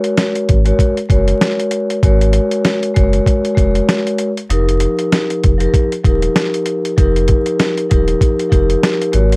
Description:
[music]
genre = hip hop, boom-bap hip-hop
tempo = 97 BPM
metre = 4/4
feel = swing 56% on 16ths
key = F phrygian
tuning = A4 = 444 Hz
[part]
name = vibraphone with soft mallets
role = accompaniment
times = 0.0-9.4 s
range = F3 to Db5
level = -16 LUFS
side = left 1 dB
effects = cassette tape, high-pass filter, low-pass filter
[part]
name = boom bap sampler-style drum kit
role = drums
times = 0.0-9.4 s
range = hi-hat, kick drum, snare drum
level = -14 LUFS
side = equal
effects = none
[part]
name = soft dub sub bass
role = bass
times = 0.5-9.4 s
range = Eb1 to Ab1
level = -15 LUFS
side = equal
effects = tube saturation
[sound]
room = little or no reverb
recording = dry, gritty hardware recording, vinyl crackle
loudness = -12 LUFS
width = side -31 dB against mid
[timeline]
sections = 0.0-9.4 A section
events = kick muted 4.5-5.1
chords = 0.0 Ab9sus4; 4.5 F9sus4

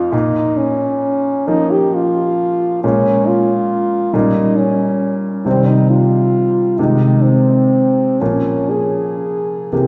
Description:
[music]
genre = classical, romantic duo for French horn and grand piano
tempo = 45 BPM (dotted quarters)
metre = 6/8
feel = uneven beats, rubato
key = unclear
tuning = A4 = 440 Hz
[part]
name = mellow French horn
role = melody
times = 0.0-9.9 s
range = C4 to Ab4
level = -18 LUFS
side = equal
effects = none
[part]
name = warm concert grand piano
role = accompaniment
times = 0.0-9.9 s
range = F2 to Eb4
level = -18 LUFS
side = equal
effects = none
[sound]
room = wet concert hall reverb, RT60 1.9 s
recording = heard from further back in the room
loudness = -15 LUFS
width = mono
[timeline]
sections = 0.0-9.9 A section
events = none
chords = 0.1 Bbm; 2.8 Bbm7; 4.1 Gdim/Bb; 5.5 Cm; 6.8 Ab/C; 8.2 Bbm

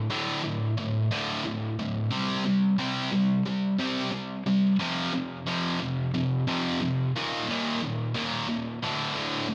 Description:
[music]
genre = metal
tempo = 90 BPM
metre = 4/4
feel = straight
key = D phrygian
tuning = A4 = 437 Hz
[part]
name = high-gain distorted guitar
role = solo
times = 0.0-9.5 s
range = D2 to C4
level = -28 LUFS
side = equal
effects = distortion, tape echo
[sound]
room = moderate studio ambience, RT60 0.5 s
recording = none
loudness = -28 LUFS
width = mono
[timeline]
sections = 0.0-9.5 A section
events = none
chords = 0.0 D5; 2.1 C5; 4.8 F5; 7.1 Eb5; 8.8 D5

